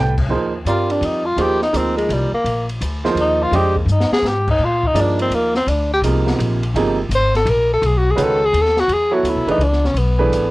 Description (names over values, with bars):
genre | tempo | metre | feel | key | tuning
modal jazz | 168 BPM | 3/4 | swing 66% on 8ths | Bb mixolydian | A4 = 440 Hz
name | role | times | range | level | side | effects
clear upright piano | accompaniment | 0.0-10.5 s | C3 to G5 | -20 LUFS | right 3 dB | none
upright bass | bass | 0.0-10.5 s | G1 to Bb2 | -20 LUFS | left 1 dB | none
open jazz drum kit | drums | 0.2-10.4 s | crash cymbal, hi-hat, kick drum, ride cymbal, snare drum | -27 LUFS | left 1 dB | cassette tape
breathy tenor saxophone | melody | 0.7-10.5 s | G3 to C5 | -17 LUFS | left 1 dB | cassette tape
room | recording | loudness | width
light reverb | home recording on cassette | -15 LUFS | side -19 dB against mid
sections
0.3-8.9 A section; 8.9-10.5 A section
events
tenor saxophone solo 0.3-10.5; drum fill 3.9-4.2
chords
0.3 Bb7sus4; 4.6 Gm7; 7.8 Badd9; 8.9 E9sus4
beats
| 0.30 0.66 1.01 | 1.37 1.73 2.09 | 2.45 2.81 3.17 | 3.52 3.88 4.24 | 4.60 4.96 5.31 | 5.67 6.03 6.39 | 6.75 7.10 7.46 | 7.82 8.18 8.53 | 8.89 9.25 9.61 | 9.96 10.32